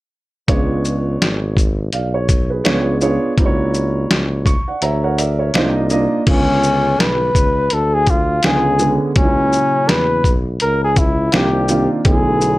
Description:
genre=hip hop, jazz-hop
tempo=83 BPM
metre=4/4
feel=swing 59% on 16ths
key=unclear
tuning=A4 = 440 Hz
part: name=dark upright piano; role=accompaniment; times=0.5-12.6 s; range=A#2 to C#6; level=-19 LUFS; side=right 2 dB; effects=none
part: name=warm tuba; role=bass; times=0.5-12.6 s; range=G#1 to E2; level=-20 LUFS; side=equal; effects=none
part: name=trip hop sampler-style drum kit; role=drums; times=0.5-12.6 s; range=crash cymbal, hi-hat, kick drum, shaker, snare drum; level=-17 LUFS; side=equal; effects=none
part: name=mellow flugelhorn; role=melody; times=6.3-12.6 s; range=C#4 to B4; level=-17 LUFS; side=left 1 dB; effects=none
room=moderate studio reverb, RT60 0.6 s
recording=dark, warm production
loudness=-14 LUFS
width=side -18 dB against mid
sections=0.5-6.3 A section; 6.3-12.6 B section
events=upright piano fill 4.1-6.3; kick muted 4.8-6.3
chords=0.5 C#7b9; 3.4 F#7b13/C#; 5.5 Cm11; 6.3 C#7b9; 9.2 F#7/C#; 11.3 Cm11; 12.1 Bm11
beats=| 0.48 1.21 1.93 2.65 | 3.38 4.10 4.82 5.54 | 6.27 6.99 7.71 8.44 | 9.16 9.88 10.61 11.33 | 12.05

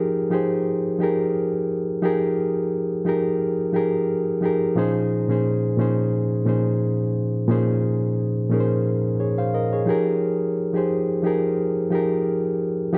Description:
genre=R&B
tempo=88 BPM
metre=4/4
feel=swing 55% on 16ths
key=Bb dorian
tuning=A4 = 438 Hz
part: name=reed electric piano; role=solo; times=0.0-13.0 s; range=Bb2 to F5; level=-22 LUFS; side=equal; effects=overdrive, spring reverb
room=moderate studio ambience, RT60 0.5 s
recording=dark, warm production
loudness=-22 LUFS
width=mono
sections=0.0-13.0 A section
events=none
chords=0.0 Fm11; 4.8 Bbm11; 9.9 Fm11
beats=0.67 1.35 | 2.03 2.71 3.40 4.08 | 4.76 5.44 6.12 6.80 | 7.49 8.17 8.85 9.53 | 10.21 10.89 11.58 12.26 | 12.94

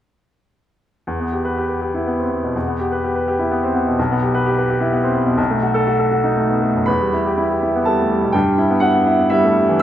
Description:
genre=classical, virtuoso piano study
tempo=124 BPM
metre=3/4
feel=uneven beats, rubato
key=E minor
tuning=A4 = 440 Hz
part: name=clear baby grand piano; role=solo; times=1.1-9.8 s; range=B1 to B5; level=-15 LUFS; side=equal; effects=none
room=moderate recital hall reverb, RT60 1.5 s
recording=none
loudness=-15 LUFS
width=side -11 dB against mid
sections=1.1-6.9 A section; 6.9-9.8 B section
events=none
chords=1.1 Em; 4.0 Em/B; 5.4 B7; 6.9 Em; 8.3 Em/G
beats=| 1.07 1.57 2.06 | 2.55 3.03 3.50 | 3.98 4.45 4.91 | 5.38 5.87 6.37 | 6.87 7.37 7.86 | 8.35 8.83 9.30 | 9.80

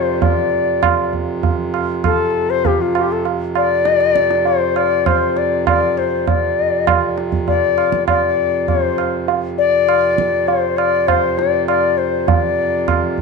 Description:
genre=indian classical, Hindustani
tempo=100 BPM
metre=5/4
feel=straight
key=unclear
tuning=A4 = 441 Hz
part: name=bright reedy bansuri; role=melody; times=0.0-13.2 s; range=F4 to D5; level=-16 LUFS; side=left 6 dB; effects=none
part: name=hand-pumped harmonium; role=drone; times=0.0-13.2 s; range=F2 to C3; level=-22 LUFS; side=right 4 dB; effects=none
part: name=tabla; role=percussion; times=0.2-13.2 s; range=none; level=-19 LUFS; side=right 8 dB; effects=none
room=wet echo chamber reverb, RT60 1.6 s, studio reverb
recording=1960s-style stereo with parts hard left and right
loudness=-14 LUFS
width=side -4 dB against mid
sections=0.0-13.2 A section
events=none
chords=none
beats=| 0.22 0.82 1.43 2.04 2.65 | 3.25 3.86 4.46 5.07 5.67 | 6.28 6.88 7.48 8.08 8.68 | 9.29 9.88 10.48 11.08 11.68 | 12.28 12.88

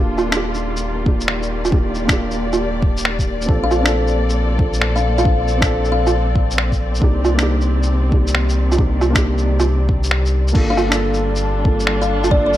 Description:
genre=future garage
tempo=136 BPM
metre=4/4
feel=swing 66% on 16ths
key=unclear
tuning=A4 = 439 Hz
part: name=felt-muted upright piano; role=accompaniment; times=0.0-12.6 s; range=Bb3 to A4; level=-23 LUFS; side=right 1 dB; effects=sidechain pumping, tape echo
part: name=muted studio string section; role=sustained chords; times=0.0-12.6 s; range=Bb2 to D5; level=-25 LUFS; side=left 1 dB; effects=sidechain pumping
part: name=warm sub bass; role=bass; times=0.0-12.6 s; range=Eb1 to C2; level=-19 LUFS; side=equal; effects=sidechain pumping
part: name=lo-fi sampler-style drum kit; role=drums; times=0.2-12.6 s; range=crash cymbal, finger snaps, shaker, woodblock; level=-20 LUFS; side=right 2 dB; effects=small room ambience
part: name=electronic kick drum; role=drums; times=1.1-12.4 s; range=none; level=-17 LUFS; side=equal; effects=small room ambience
part: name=kalimba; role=melody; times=3.6-6.5, 10.7-12.6 s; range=D5 to F5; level=-23 LUFS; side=left 3 dB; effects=vintage 12-bit sampler grit, tape echo
room=moderate recital hall reverb, RT60 1.4 s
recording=none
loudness=-15 LUFS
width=side -13 dB against mid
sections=0.0-12.6 A section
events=kick drops out 10.1-10.5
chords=0.0 Ebmaj9; 3.5 Bbmaj7; 7.0 Cm7; 10.5 Gm7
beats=0.40 0.84 1.28 | 1.73 2.17 2.61 3.05 | 3.49 3.93 4.37 4.81 | 5.25 5.70 6.14 6.58 | 7.02 7.46 7.90 8.34 | 8.78 9.23 9.67 10.11 | 10.55 10.99 11.43 11.87 | 12.31

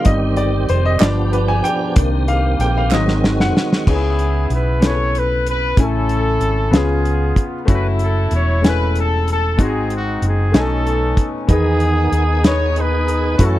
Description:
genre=slow gospel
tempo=63 BPM (dotted quarters)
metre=6/8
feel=straight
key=C minor, C# minor from 3.9 s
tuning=A4 = 440 Hz
part: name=clear upright piano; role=accompaniment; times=0.0-13.6 s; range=G#2 to Ab5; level=-21 LUFS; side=left 3 dB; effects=none
part: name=tonewheel organ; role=sustained chords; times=0.0-3.9, 11.5-13.6 s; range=D3 to G#4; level=-22 LUFS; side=right 4 dB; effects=slow rotary speaker, chorus vibrato
part: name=warm soul drum kit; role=drums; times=0.0-13.5 s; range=crash cymbal, hi-hat, kick drum, snare drum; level=-16 LUFS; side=equal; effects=none
part: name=hollow-body short-scale fingered electric bass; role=bass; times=0.1-13.6 s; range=E1 to F#2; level=-18 LUFS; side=equal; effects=none
part: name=group handclap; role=percussion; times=1.0-3.2 s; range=none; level=-25 LUFS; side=right 14 dB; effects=none
part: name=clear horn section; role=melody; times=3.9-13.6 s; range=B3 to C#5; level=-21 LUFS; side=left 1 dB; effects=none
room=little or no reverb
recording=dry, close 1970s-style studio recording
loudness=-14 LUFS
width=side -14 dB against mid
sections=0.0-3.9 A section; 3.9-13.6 B section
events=upright piano solo 0.0-3.9; drum fill 2.9-3.9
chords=0.1 Cm/G; 1.0 G7; 2.0 Cm7; 2.9 Ab7; 3.9 C#m7; 5.8 Amaj7; 6.7 C#7; 7.7 F#m7; 9.6 G#7; 10.5 B13; 11.5 Emaj7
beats=| 0.06 1.01 | 1.96 2.91 | 3.87 4.82 | 5.77 6.72 | 7.68 8.63 | 9.58 10.54 | 11.49 12.44 | 13.39

